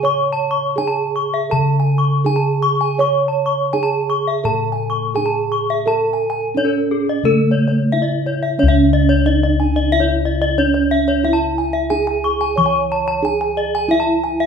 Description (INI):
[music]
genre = Balinese gamelan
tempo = 81-91 BPM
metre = 4/4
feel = straight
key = C# pelog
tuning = A4 = 444 Hz
[part]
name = gamelan-type bronze metallophone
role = melody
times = 0.0-14.5 s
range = A3 to C#5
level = -20 LUFS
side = right 5 dB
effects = none
[part]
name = gamelan-type bronze metallophone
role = arpeggios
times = 0.0-14.5 s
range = G#4 to C#6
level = -19 LUFS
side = left 3 dB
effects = none
[part]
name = gamelan-type bossed gongs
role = bass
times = 0.0-14.5 s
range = C#2 to C#5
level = -20 LUFS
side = left 1 dB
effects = none
[sound]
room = wet recital hall reverb, RT60 1.2 s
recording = minimal, uncompressed stereo recording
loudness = -15 LUFS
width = side -6 dB against mid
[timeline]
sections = 0.0-8.6 A section; 8.6-14.5 B section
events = none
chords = none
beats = | 0.03 0.77 1.51 2.25 | 3.00 3.73 4.46 5.17 | 5.87 6.57 7.25 7.93 | 8.59 9.25 9.91 10.58 | 11.24 11.90 12.56 13.22 | 13.88